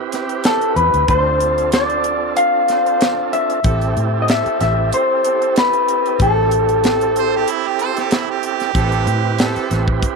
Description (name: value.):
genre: straight-eighth soul blues.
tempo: 94 BPM.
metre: 4/4.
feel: swing 54% on 16ths.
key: A minor.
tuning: A4 = 440 Hz.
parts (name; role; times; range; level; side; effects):
tonewheel organ; accompaniment; 0.0-10.2 s; C4 to B4; -23 LUFS; right 12 dB; slow rotary speaker, overdrive.
bright horn section; sustained chords; 0.1-9.9 s; C4 to C5; -30 LUFS; left 2 dB; none.
tight funk drum kit; drums; 0.1-10.2 s; hi-hat, kick drum, snare drum; -20 LUFS; equal; none.
electric guitar through a small old amp; melody; 0.5-7.4 s; A4 to F5; -16 LUFS; left 2 dB; none.
vintage muted fingered electric bass; bass; 0.8-10.0 s; A1 to A2; -20 LUFS; equal; none.
clear harmonica; second line; 7.2-9.7 s; E4 to C5; -22 LUFS; right 12 dB; overdrive.
room: light reverb, small room ambience.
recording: 1960s-style stereo.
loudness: -14 LUFS.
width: side -4 dB against mid.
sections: 0.0-10.2 A section.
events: none.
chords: 0.0 Am7; 1.1 Dm7; 3.6 Am7.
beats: 0.45 | 1.09 1.73 2.37 3.00 | 3.64 4.28 4.92 5.56 | 6.20 6.84 7.48 8.12 | 8.75 9.39 10.03.